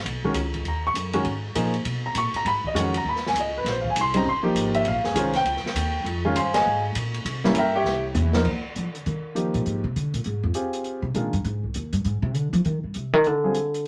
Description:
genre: modal jazz.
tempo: 200 BPM.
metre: 4/4.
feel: swing 62% on 8ths.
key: F dorian from 8.5 s.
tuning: A4 = 440 Hz.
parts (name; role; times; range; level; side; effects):
upright bass; bass; 0.0-13.9 s; E#1 to F3; -28 LUFS; equal; none.
open jazz drum kit; drums; 0.1-13.8 s; crash cymbal, hi-hat, kick drum, ride cymbal, snare drum, toms; -34 LUFS; equal; none.
warm concert grand piano; accompaniment; 0.2-11.3, 13.4-13.5 s; C#3 to C#6; -26 LUFS; equal; none.
room: moderate studio reverb, RT60 0.5 s.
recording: none.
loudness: -25 LUFS.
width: mono.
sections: 0.0-8.5 A section; 8.5-13.9 A section.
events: drum fill 7.9-8.5; upright bass solo 8.5-13.9.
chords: 0.0 G#m11; 3.7 A#m11; 7.3 C7b9; 8.5 Fm11.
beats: | 0.06 0.36 0.66 0.96 | 1.26 1.56 1.86 2.16 | 2.46 2.76 3.06 3.36 | 3.66 3.96 4.26 4.56 | 4.86 5.16 5.46 5.76 | 6.06 6.36 6.66 6.96 | 7.25 7.55 7.86 8.15 | 8.46 8.76 9.05 9.36 | 9.65 9.96 10.26 10.55 | 10.86 11.15 11.45 11.75 | 12.05 12.35 12.65 12.95 | 13.25 13.55 13.85.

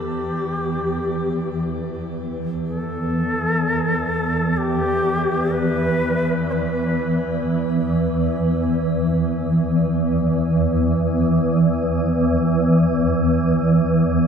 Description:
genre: dark ambient drone.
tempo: free time.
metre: none.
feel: none.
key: E minor.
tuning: A4 = 440 Hz.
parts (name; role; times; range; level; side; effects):
shakuhachi; melody; 0.0-7.4 s; G4 to C#5; -24 LUFS; left 1 dB; shimmer reverb, tape echo.
swarming drone; drone; 0.0-14.3 s; E2 to E3; -18 LUFS; right 1 dB; built-in reverb.
room: wet spring reverb, RT60 2.5 s.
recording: echo-heavy mix.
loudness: -18 LUFS.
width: side -7 dB against mid.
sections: 0.0-14.3 A section.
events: none.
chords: none.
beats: free time.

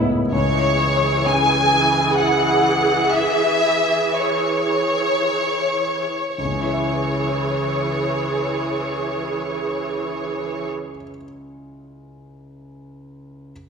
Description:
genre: cinematic, emotional film score for orchestra.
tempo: 50-65 BPM.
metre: 3/4.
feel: rubato.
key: C# minor.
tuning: A4 = 440 Hz.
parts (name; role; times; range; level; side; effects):
warm concert grand piano; accompaniment; 0.0-13.5 s; C#2 to E5; -25 LUFS; left 2 dB; none.
warm symphonic viola section; accompaniment; 0.0-10.7 s; E3 to G#4; -23 LUFS; right 3 dB; none.
warm symphonic violin section; melody; 0.3-10.7 s; C#5 to G#5; -20 LUFS; left 2 dB; none.
room: wet scoring stage reverb, RT60 1.9 s.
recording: minimal, uncompressed stereo recording.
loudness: -17 LUFS.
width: side -6 dB against mid.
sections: 0.3-6.4 A section; 6.4-9.9 B section.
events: slowing down 0.0-6.4.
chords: 0.3 C#m.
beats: | 0.33 1.26 2.19 | 3.13 4.13 5.21 | 6.38 7.56 8.74.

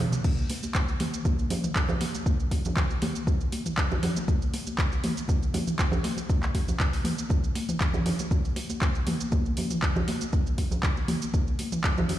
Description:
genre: house.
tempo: 119 BPM.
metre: 4/4.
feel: swing 54% on 16ths.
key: none.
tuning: none.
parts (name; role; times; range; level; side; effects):
afro-pop drum kit; drums; 0.1-12.2 s; crash cymbal, handclaps, hi-hat, shaker, toms; -31 LUFS; equal; studio reverb.
congas; percussion; 0.1-12.2 s; none; -31 LUFS; right 1 dB; none.
electronic kick drum; drums; 0.2-12.0 s; none; -25 LUFS; equal; overdrive, studio reverb.
room: light reverb.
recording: played on a big sound system in a bare room, large studio reverb.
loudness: -24 LUFS.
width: side -13 dB against mid.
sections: 0.0-12.2 A section.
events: drum fill 0.0.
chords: none.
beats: | 0.25 0.75 1.25 1.76 | 2.26 2.77 3.27 3.78 | 4.28 4.79 5.29 5.79 | 6.30 6.80 7.31 7.81 | 8.31 8.82 9.32 9.83 | 10.33 10.84 11.34 11.84.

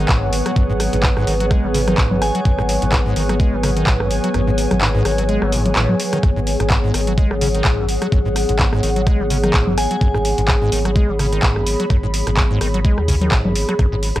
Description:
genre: acid house.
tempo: 127 BPM.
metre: 4/4.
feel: swing 56% on 16ths.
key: G# minor.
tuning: A4 = 440 Hz.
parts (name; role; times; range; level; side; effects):
warbly tape-like pad; sustained chords; 0.0-14.2 s; F#3 to C#5; -23 LUFS; equal; chorus, built-in reverb, sidechain pumping.
acid bass, square; riff; 0.0-14.2 s; F#2 to G#3; -23 LUFS; equal; tube saturation, wide subtle chorus, tape echo.
saturated sub bass; bass; 0.0-14.2 s; G#1 to D#2; -22 LUFS; equal; sidechain pumping.
warbly tape-like pad; texture; 0.0-14.2 s; G#4 to B5; -26 LUFS; left 1 dB; chorus, built-in reverb, sidechain pumping.
electro analog drum machine; drums; 0.1-14.2 s; congas, handclaps, hi-hat, rim click; -21 LUFS; equal; none.
electronic kick drum; drums; 0.1-13.9 s; none; -17 LUFS; equal; none.
glassy synth bell; melody; 2.2-2.9, 9.8-10.4 s; G#5; -26 LUFS; left 1 dB; chorus, tape echo.
room: little or no reverb.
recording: dry, gritty hardware recording, cassette tape.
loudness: -15 LUFS.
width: side -14 dB against mid.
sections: 0.0-14.2 A section.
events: kick drops out 4.3-6.2.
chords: 0.0 G#m7.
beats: 0.09 | 0.56 1.04 1.51 1.98 | 2.45 2.92 3.40 3.87 | 4.34 4.82 5.29 5.76 | 6.23 6.71 7.18 7.65 | 8.12 8.60 9.07 9.54 | 10.01 10.48 10.96 11.43 | 11.90 12.37 12.85 13.32 | 13.79.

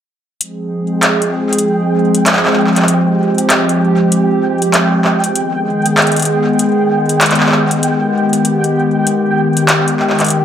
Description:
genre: IDM.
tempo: 97 BPM.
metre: 4/4.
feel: swing 62% on 16ths.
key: unclear.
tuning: A4 = 440 Hz.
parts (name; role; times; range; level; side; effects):
hollow soft pad; sustained chords; 0.4-10.4 s; Eb3 to Ab4; -13 LUFS; equal; chorus.
electro analog drum machine; drums; 0.4-10.4 s; handclaps, hi-hat; -14 LUFS; equal; none.
flickering grainy texture; texture; 1.0-10.4 s; G5; -21 LUFS; right 1 dB; built-in reverb.
room: moderate plate reverb, RT60 2.6 s.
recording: none.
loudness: -11 LUFS.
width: side -9 dB against mid.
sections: 0.4-10.4 A section.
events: none.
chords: 0.4 Fm; 5.4 Abm.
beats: | 0.41 1.02 1.64 2.26 | 2.88 3.50 4.12 4.74 | 5.36 5.97 6.59 7.21 | 7.83 8.45 9.07 9.69 | 10.30.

